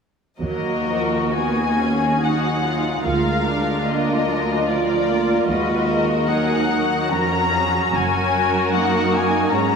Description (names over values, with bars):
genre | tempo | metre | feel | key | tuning
classical, slow romantic movement for string orchestra | 59-77 BPM | 3/4 | rubato | Eb minor | A4 = 438 Hz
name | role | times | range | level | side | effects
muted symphonic violin section | melody | 0.4-9.8 s | D5 to Bb5 | -23 LUFS | left 4 dB | none
muted chamber violin section | second line | 0.4-9.8 s | F4 to Db5 | -24 LUFS | left 3 dB | none
muted studio viola section | accompaniment | 0.4-9.8 s | Eb3 to F4 | -23 LUFS | right 4 dB | none
muted chamber double bass section | bass | 0.4-8.7 s | Gb1 to Eb2 | -29 LUFS | right 4 dB | none
muted studio cello section | bass | 0.4-9.8 s | D2 to Ab2 | -24 LUFS | right 1 dB | none
room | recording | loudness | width
wet concert hall reverb, RT60 1.9 s | minimal, uncompressed stereo recording | -17 LUFS | side -6 dB against mid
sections
0.4-9.8 A section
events
none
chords
0.4 Ebm; 3.0 Bb7/D; 5.5 Ebm; 7.9 Gb